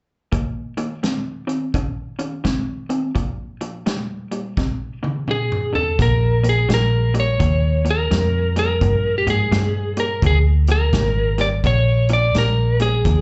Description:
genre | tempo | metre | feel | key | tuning
electric blues shuffle | 85 BPM | 4/4 | swing 64% on 8ths | unclear | A4 = 440 Hz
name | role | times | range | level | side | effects
electric guitar through a small old amp | riff | 0.3-13.2 s | F2 to Db4 | -29 LUFS | equal | slapback echo
natural country drum kit | drums | 0.3-13.2 s | hi-hat, kick drum, snare drum, toms | -26 LUFS | equal | none
lightly driven lead guitar | melody | 5.3-13.2 s | G4 to D5 | -23 LUFS | equal | slapback echo, tape echo
vintage muted fingered electric bass | bass | 6.0-13.2 s | Ab1 to Ab2 | -20 LUFS | equal | none
room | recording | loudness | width
light reverb | live gig heard through the venue's PA, club reverb, nothing above 8.0 kHz | -19 LUFS | mono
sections
0.3-6.0 A section; 6.0-13.2 B section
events
drum fill 4.6-6.0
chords
0.3 Eb5; 3.2 Bb5; 4.6 F5; 6.0 Bb7(no3)

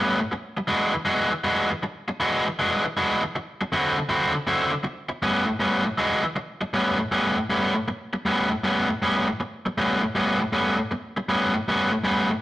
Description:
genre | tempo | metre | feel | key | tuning
blues | 158 BPM | 4/4 | swing 67% on 8ths | A mixolydian | A4 = 441 Hz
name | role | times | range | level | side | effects
cranked stack guitar | solo | 0.0-12.3 s | A2 to F#4 | -21 LUFS | equal | overdrive
room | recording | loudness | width
moderate stone room reverb, RT60 1.1 s | rough rehearsal-room recording, tube saturation | -22 LUFS | side -15 dB against mid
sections
0.0-6.7 A section; 6.7-12.4 A section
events
none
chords
0.0 A9; 0.7 E9; 3.7 D9; 5.2 A9; 6.0 E9; 6.7 A9

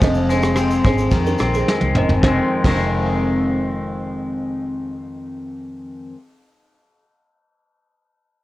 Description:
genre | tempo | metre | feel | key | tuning
indie pop, bedroom pop | 108 BPM | 4/4 | straight | F minor | A4 = 441 Hz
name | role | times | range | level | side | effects
kalimba | second line | 0.0-3.9 s | G4 to Eb5 | -24 LUFS | right 4 dB | analog chorus, slapback echo
clean electric guitar | accompaniment | 0.0-6.2 s | F2 to C4 | -20 LUFS | left 2 dB | lush chorus, vibrato effect
vintage muted fingered electric bass | bass | 0.0-5.9 s | F1 to F2 | -23 LUFS | equal | transformer saturation
soft brush drum kit | drums | 0.0-2.8 s | crash cymbal, kick drum, ride cymbal, rim click, shaker, snare drum, toms | -20 LUFS | equal | none
room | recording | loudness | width
light reverb | worn, warbling old tape, cassette tape, warbly pitch drift | -16 LUFS | side -16 dB against mid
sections
0.0-2.2 A section; 2.2-4.4 B section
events
drum fill 1.7-2.2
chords
0.0 Fm7

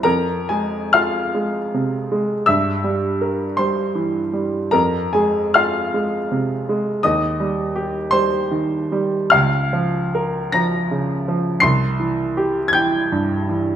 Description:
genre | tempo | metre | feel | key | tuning
classical, romantic nocturne for solo piano | 44-57 BPM (dotted quarters) | 12/8 | rubato | F minor | A4 = 440 Hz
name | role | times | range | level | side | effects
clear baby grand piano | solo | 0.0-13.8 s | C2 to C7 | -17 LUFS | equal | none
room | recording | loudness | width
wet recital hall reverb, RT60 1.4 s | none | -17 LUFS | side -10 dB against mid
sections
0.0-13.8 A section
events
none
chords
0.0 Fm; 2.5 C7/G; 4.7 Fm; 7.0 Cm/Eb; 9.3 Bbm/Db; 11.6 C

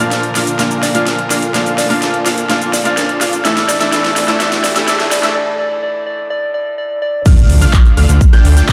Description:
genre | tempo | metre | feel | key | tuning
EDM, festival progressive house | 126 BPM | 4/4 | straight | D minor | A4 = 439 Hz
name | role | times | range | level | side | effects
soft struck synth lead | melody | 0.0-7.2 s | D5 | -23 LUFS | equal | chorus, delay
bright concert grand piano | accompaniment | 0.0-7.3 s | A2 to F4 | -22 LUFS | equal | sidechain pumping, delay
clear studio string section | sustained chords | 0.0-8.7 s | C3 to Bb4 | -28 LUFS | equal | none
dark grand piano | arpeggios | 0.0-8.7 s | E6 to G6 | -23 LUFS | equal | sidechain pumping, low-pass filter, delay
supersaw stab | riff | 0.0-8.7 s | A3 to G5 | -22 LUFS | equal | sidechain pumping, delay
big-room dance drum kit | drums | 0.0-8.7 s | crash cymbal, handclaps, hi-hat, rim click, shaker, snare drum | -21 LUFS | equal | overdrive, high-pass filter on snare, high-pass filter on hats, high-pass filter on perc, high-pass filter on cymbals
riser and impact | sound effects | 1.9-8.7 s | none | -23 LUFS | equal | none
electronic kick drum | drums | 7.3-8.7 s | none | -11 LUFS | equal | overdrive
fat analog bass | bass | 7.5-8.6 s | D2 | -11 LUFS | equal | sidechain pumping
room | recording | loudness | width
moderate digital room reverb, RT60 1.1 s | high-pass filter | -13 LUFS | mono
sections
0.0-7.3 A section; 7.3-8.7 B section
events
build-up 0.0-7.3; drum fill 0.0-5.4; filter sweep 0.0-7.3; break 5.4-7.3; drop 7.3-8.7; impact 7.3-8.7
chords
0.0 Bb; 3.4 Am; 7.3 Dm

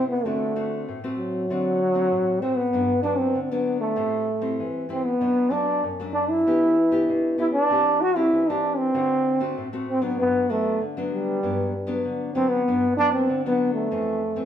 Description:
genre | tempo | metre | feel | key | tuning
samba | 97 BPM | 4/4 | straight | G major | A4 = 440 Hz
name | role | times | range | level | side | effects
breathy trombone | melody | 0.0-14.5 s | F#3 to F#4 | -22 LUFS | equal | none
nylon-string guitar | accompaniment | 0.0-14.5 s | F2 to G4 | -28 LUFS | left 2 dB | none
room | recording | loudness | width
wet stone room reverb, RT60 1.2 s | band playing live in one room | -21 LUFS | side -9 dB against mid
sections
0.0-12.7 A section; 12.7-14.5 A section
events
none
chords
0.3 D7; 2.7 Gmaj7; 4.0 Am7; 5.2 Bm7; 6.5 Em7; 7.7 Cadd9/E; 8.9 D7; 10.2 Gmaj7; 13.9 Fmaj7

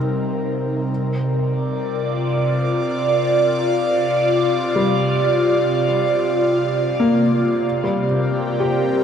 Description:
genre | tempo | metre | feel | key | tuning
ambient | 53 BPM | 3/4 | straight | unclear | A4 = 440 Hz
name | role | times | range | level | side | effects
airy breathy pad | sustained chords | 0.0-9.0 s | C3 to D5 | -18 LUFS | equal | chorus, phaser
felt-muted upright piano | arpeggios | 0.0-9.0 s | G3 to G4 | -21 LUFS | left 2 dB | tape echo
room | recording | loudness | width
wet huge ambient reverb, RT60 7.3 s | dark, warm production | -17 LUFS | side -8 dB against mid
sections
0.0-9.0 A section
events
none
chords
0.0 Cm7; 0.9 Gmadd11/C

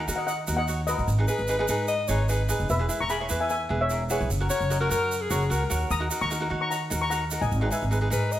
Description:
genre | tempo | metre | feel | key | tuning
calypso | 149 BPM | 4/4 | straight | unclear | A4 = 440 Hz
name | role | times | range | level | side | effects
steel pan | melody | 0.0-8.1 s | B4 to D#6 | -29 LUFS | left 2 dB | none
cavaquinho | accompaniment | 0.0-8.4 s | D#4 to D#5 | -30 LUFS | right 1 dB | none
upright bass | bass | 0.0-8.4 s | E1 to D#3 | -27 LUFS | equal | none
tube shaker | percussion | 0.1-8.4 s | none | -36 LUFS | right 6 dB | none
bright alto saxophone | second line | 1.3-8.4 s | G#4 to D#5 | -28 LUFS | left 3 dB | none
room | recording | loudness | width
moderate recital hall reverb, RT60 1.5 s | none | -23 LUFS | side -12 dB against mid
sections
0.0-8.4 A section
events
none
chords
0.0 D#m; 1.1 G#m; 2.7 E; 4.3 F#; 5.9 D#m7; 7.5 G#m

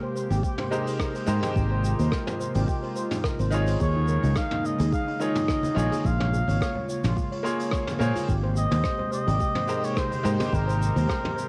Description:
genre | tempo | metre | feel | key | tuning
sunset chillout | 107 BPM | 4/4 | swing 54% on 16ths | Ab major | A4 = 439 Hz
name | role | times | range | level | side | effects
airy breathy pad | sustained chords | 0.0-11.5 s | C3 to G4 | -34 LUFS | equal | chorus
steel pan | arpeggios | 0.0-11.5 s | Eb4 to Db5 | -36 LUFS | equal | tape echo
vintage brush drum kit | drums | 0.2-11.5 s | hi-hat, rim click, shaker, toms | -38 LUFS | equal | cassette tape
fingered electric bass | bass | 0.3-11.1 s | Ab1 to Bb2 | -26 LUFS | equal | tube saturation
electronic kick drum | drums | 0.4-11.2 s | none | -31 LUFS | equal | overdrive, cassette tape
bright concert grand piano | accompaniment | 0.7-11.5 s | Eb3 to C6 | -34 LUFS | equal | vintage 12-bit sampler grit, tape echo
trumpet with cup mute | melody | 3.8-11.5 s | Bb4 to F5 | -33 LUFS | equal | cassette tape
congas | percussion | 4.0-11.3 s | none | -42 LUFS | equal | none
room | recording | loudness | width
moderate studio reverb, RT60 0.6 s | home recording on cassette | -26 LUFS | mono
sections
0.0-11.5 A section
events
none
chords
0.0 Abmaj9; 3.8 Eb7sus4; 6.0 Bbm7; 8.3 Abmaj9

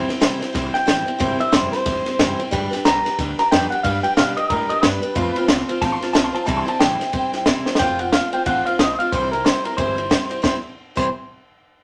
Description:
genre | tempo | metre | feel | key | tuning
rockabilly | 182 BPM | 4/4 | swing 60% on 8ths | C major | A4 = 440 Hz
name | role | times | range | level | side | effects
electric guitar through a small old amp | melody | 0.0-11.1 s | Bb4 to C6 | -24 LUFS | equal | none
picked steel-string acoustic guitar | accompaniment | 0.0-11.1 s | C3 to C5 | -26 LUFS | equal | none
upright bass | bass | 0.0-11.1 s | E1 to B2 | -34 LUFS | equal | none
compact cocktail drum kit | drums | 0.1-11.0 s | crash cymbal, kick drum, ride cymbal, snare drum | -23 LUFS | equal | none
room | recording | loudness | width
moderate studio reverb, RT60 0.8 s | none | -20 LUFS | mono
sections
0.0-7.8 A section; 7.8-10.4 B section; 10.4-11.8 C section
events
drum fill 7.6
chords
0.0 C; 2.5 G; 5.2 F; 6.5 C; 7.8 F; 9.1 C

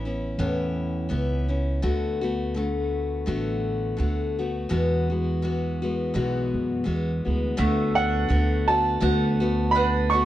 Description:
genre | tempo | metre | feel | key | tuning
acoustic folk duo or small band | 83 BPM | 4/4 | swing 55% on 8ths | D lydian | A4 = 438 Hz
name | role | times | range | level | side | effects
picked steel-string acoustic guitar | accompaniment | 0.0-10.2 s | E2 to F#4 | -26 LUFS | left 3 dB | none
upright bass | bass | 0.0-10.2 s | A1 to F#2 | -26 LUFS | right 1 dB | none
bowl-back mandolin | arpeggios | 7.6-10.2 s | A3 to F#5 | -30 LUFS | right 4 dB | none
clear upright piano | melody | 8.0-10.2 s | F#5 to C#6 | -24 LUFS | right 3 dB | none
room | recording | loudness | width
little or no reverb | worn, warbling old tape, cassette tape, warbly pitch drift | -22 LUFS | side -13 dB against mid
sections
0.0-7.6 A section; 7.6-10.2 B section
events
none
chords
0.0 Aadd9; 1.8 D6; 4.7 Eadd9; 7.6 D6

